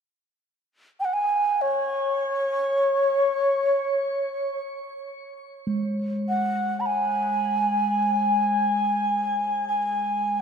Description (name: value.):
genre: world meditative, free-time meditation music.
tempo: free time.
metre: none.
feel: none.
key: unclear.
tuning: A4 = 438 Hz.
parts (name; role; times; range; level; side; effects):
reedy low xiao; melody; 1.0-10.4 s; C#5 to B5; -22 LUFS; equal; shimmer reverb, ping-pong delay.
bronze singing bowl; texture; 5.7-10.4 s; G#3; -29 LUFS; equal; shimmer reverb.
room: wet church reverb, RT60 3.3 s.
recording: none.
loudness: -22 LUFS.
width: side -6 dB against mid.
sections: 0.0-4.8 A section; 4.8-10.4 A section.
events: none.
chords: none.